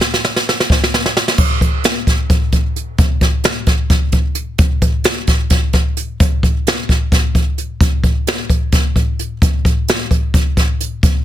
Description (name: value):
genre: rock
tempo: 261 BPM (eighths)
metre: 7/8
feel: straight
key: none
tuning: none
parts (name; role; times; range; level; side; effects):
- jazz brush drum kit; drums; 0.0-11.1 s; crash cymbal, hi-hat, kick drum, snare drum; -13 LUFS; equal; soft clipping on snare
room: little or no reverb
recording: dense, heavily limited modern master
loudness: -13 LUFS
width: side -12 dB against mid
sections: 0.0-1.4 A section; 1.4-11.2 B section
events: drum fill 0.0-1.4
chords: none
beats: 0.00 0.23 0.46 0.69 0.92 1.15 | 1.38 1.61 1.84 2.07 2.30 2.52 2.75 | 2.98 3.21 3.44 3.67 3.90 4.13 4.36 | 4.59 4.82 5.05 5.28 5.51 5.74 5.97 | 6.20 6.43 6.66 6.88 7.12 7.34 7.58 | 7.80 8.03 8.26 8.49 8.72 8.95 9.18 | 9.41 9.64 9.88 10.11 10.34 10.56 10.79 | 11.03